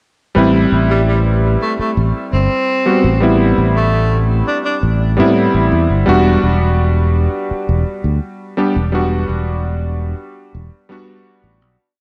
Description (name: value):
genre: vaporwave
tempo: 84 BPM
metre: 4/4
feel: straight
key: A dorian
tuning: A4 = 439 Hz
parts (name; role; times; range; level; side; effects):
- warm electric grand piano; accompaniment; 0.3-11.8 s; G3 to B4; -18 LUFS; equal; subtle chorus, diffuse ambient delay
- fingered electric bass; bass; 0.4-11.8 s; E1 to A2; -17 LUFS; equal; none
- breathy tenor saxophone; melody; 0.9-4.8 s; G3 to D4; -22 LUFS; equal; tape echo
room: moderate church reverb, RT60 3.2 s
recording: dreamy mix soaked in reverb, cassette tape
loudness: -15 LUFS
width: mono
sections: 0.4-11.8 groove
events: fade-out 8.0-11.8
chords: 0.4 Am9; 6.1 Em9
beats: | 0.36 1.08 1.79 2.51 | 3.22 3.94 4.65 5.37 | 6.08 6.79 7.51 8.22 | 8.94 9.65 10.37 11.08